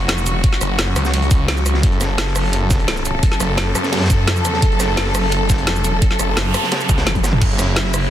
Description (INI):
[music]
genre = dark technical drum and bass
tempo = 172 BPM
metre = 4/4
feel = straight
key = F# minor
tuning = A4 = 440 Hz
[part]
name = clear studio string section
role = sustained chords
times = 0.0-8.1 s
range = C#3 to A4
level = -22 LUFS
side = equal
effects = sidechain pumping
[part]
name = snarling distorted saw bass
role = bass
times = 0.0-8.1 s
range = F#1 to F#2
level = -19 LUFS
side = equal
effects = distortion, tube saturation, sidechain pumping
[part]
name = crunchy breakbeat drum kit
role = drums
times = 0.0-8.0 s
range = hi-hat, snare drum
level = -28 LUFS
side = equal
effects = high-pass filter on hats, high-pass filter on snare, high-pass filter on room
[part]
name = drum and bass drum kit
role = drums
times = 0.1-8.0 s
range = crash cymbal, hi-hat, rim click, shaker, snare drum, toms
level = -22 LUFS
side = right 1 dB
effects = none
[part]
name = electronic kick drum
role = drums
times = 0.4-7.5 s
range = none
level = -16 LUFS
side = equal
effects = overdrive
[part]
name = noise sweep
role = sound effects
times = 6.2-7.4 s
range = none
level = -26 LUFS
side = right 4 dB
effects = none
[sound]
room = light reverb, digital ambience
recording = dense, heavily limited modern master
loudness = -14 LUFS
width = side -11 dB against mid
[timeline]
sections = 0.0-8.1 A section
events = noise sweep 6.2-7.4; drum fill 7.1-7.4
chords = 0.0 F#5